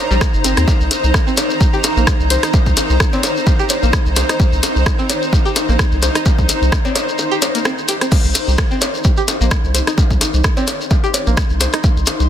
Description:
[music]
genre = minimal techno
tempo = 129 BPM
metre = 4/4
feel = swing 55% on 16ths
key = C minor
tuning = A4 = 439 Hz
[part]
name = granular cloud pad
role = texture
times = 0.0-12.3 s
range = Eb4 to C6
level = -21 LUFS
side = equal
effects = built-in reverb, sidechain pumping
[part]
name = string-like resonator pluck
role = riff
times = 0.1-11.8 s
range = G3 to C5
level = -24 LUFS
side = equal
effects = chorus, sidechain pumping, tape echo
[part]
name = round analog bass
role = bass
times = 0.1-12.3 s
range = G1 to Eb2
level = -16 LUFS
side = equal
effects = sidechain pumping
[part]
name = shekere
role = percussion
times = 0.1-12.3 s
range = none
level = -24 LUFS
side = left 3 dB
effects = none
[part]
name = electronic kick drum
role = drums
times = 0.2-11.9 s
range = none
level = -15 LUFS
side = equal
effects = overdrive, small room reverb
[part]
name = punchy analog drum machine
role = drums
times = 0.2-12.2 s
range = crash cymbal, hi-hat, rim click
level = -20 LUFS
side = left 1 dB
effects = overdrive, small room reverb, soft clipping on snare
[part]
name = bongos and cowbell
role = percussion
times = 0.2-12.2 s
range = none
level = -25 LUFS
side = left 1 dB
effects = small room reverb
[sound]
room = light reverb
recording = dense, heavily limited modern master, faint mains hum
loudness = -13 LUFS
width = side -10 dB against mid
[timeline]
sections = 0.0-12.3 A section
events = none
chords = 0.0 Cm7

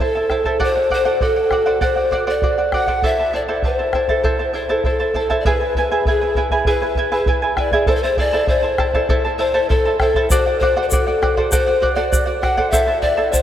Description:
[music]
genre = andean folk, Andean ensemble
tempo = 99 BPM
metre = 4/4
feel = straight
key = unclear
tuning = A4 = 440 Hz
[part]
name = breathy mellow polished pan flute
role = melody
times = 0.0-13.4 s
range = G#4 to F#5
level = -18 LUFS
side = left 2 dB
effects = none
[part]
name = charango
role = accompaniment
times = 0.0-13.4 s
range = E4 to A5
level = -20 LUFS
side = right 2 dB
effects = none
[part]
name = bombo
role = percussion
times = 0.3-13.4 s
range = none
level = -22 LUFS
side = equal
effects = none
[part]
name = egg shaker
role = percussion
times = 10.3-13.4 s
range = none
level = -25 LUFS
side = left 4 dB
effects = none
[sound]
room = wet cathedral reverb, RT60 5.6 s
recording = in a vast, echoing space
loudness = -15 LUFS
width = side -10 dB against mid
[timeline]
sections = 0.0-5.5 A section; 5.5-13.4 A section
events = none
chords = 0.0 Am; 0.6 D7; 3.0 Am; 5.5 E; 7.9 Am; 10.3 D7; 12.7 Am

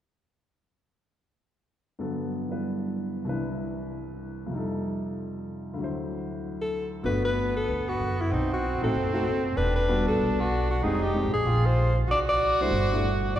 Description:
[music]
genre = jazz, small-group swing and bop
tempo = 190 BPM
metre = 4/4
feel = swing 62% on 8ths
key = G major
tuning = A4 = 441 Hz
[part]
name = warm grand piano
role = accompaniment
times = 2.0-13.0 s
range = C2 to C5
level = -31 LUFS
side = left 1 dB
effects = none
[part]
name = warm alto saxophone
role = melody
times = 6.6-13.4 s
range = D#4 to D5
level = -27 LUFS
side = left 1 dB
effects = none
[part]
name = clear trumpet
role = second line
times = 7.0-13.4 s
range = B3 to F#4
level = -31 LUFS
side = right 3 dB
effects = none
[part]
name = upright bass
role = bass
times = 7.0-13.4 s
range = E1 to F#2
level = -27 LUFS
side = equal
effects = none
[sound]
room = wet church reverb, RT60 3.3 s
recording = recorded in a church or concert hall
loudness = -24 LUFS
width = side -11 dB against mid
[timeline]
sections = 2.0-7.0 A section; 7.0-13.4 B section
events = none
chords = 2.0 Gmaj7; 3.2 Cmaj7; 4.5 F9; 5.8 D7; 7.0 Gmaj9; 8.3 B7b9; 9.6 Em9; 10.8 Fm7; 11.5 Bbsus2; 12.1 C6

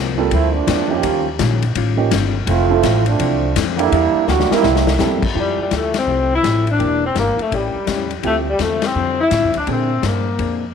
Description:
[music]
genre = jazz, big band swing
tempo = 166 BPM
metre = 4/4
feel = swing 64% on 8ths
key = F major from 5.4 s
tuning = A4 = 440 Hz
[part]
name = hollow-body jazz guitar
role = accompaniment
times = 0.0-10.6 s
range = F2 to G4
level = -25 LUFS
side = left 12 dB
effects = none
[part]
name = upright bass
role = bass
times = 0.0-10.7 s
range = E1 to Bb2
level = -21 LUFS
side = equal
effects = none
[part]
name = warm upright piano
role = accompaniment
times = 0.2-9.9 s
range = D3 to Bb4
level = -23 LUFS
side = right 10 dB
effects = none
[part]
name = bright trombone section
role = second line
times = 0.3-5.0 s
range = D3 to G4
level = -19 LUFS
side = right 10 dB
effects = none
[part]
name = swinging big-band drum kit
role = drums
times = 0.3-10.5 s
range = crash cymbal, hi-hat, kick drum, ride cymbal, snare drum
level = -23 LUFS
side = left 8 dB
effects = none
[part]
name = mellow saxophone section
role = melody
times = 5.4-10.7 s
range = G3 to E4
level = -18 LUFS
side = left 3 dB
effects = none
[sound]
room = moderate plate reverb, RT60 2.5 s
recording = 1960s-style stereo with parts hard left and right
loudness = -15 LUFS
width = side -7 dB against mid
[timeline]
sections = 0.0-5.4 A section; 5.4-10.7 B section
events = trombone section solo 0.0-5.4; drum fill 4.3-5.0; band accent 5.9, 8.8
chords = 0.0 Gm11; 1.0 Eb9; 2.5 Fmaj7; 3.9 Em7b5; 4.6 C7; 5.4 Fmaj9; 6.8 Em7b5; 7.5 A7; 8.2 Dm11; 9.7 Bb9

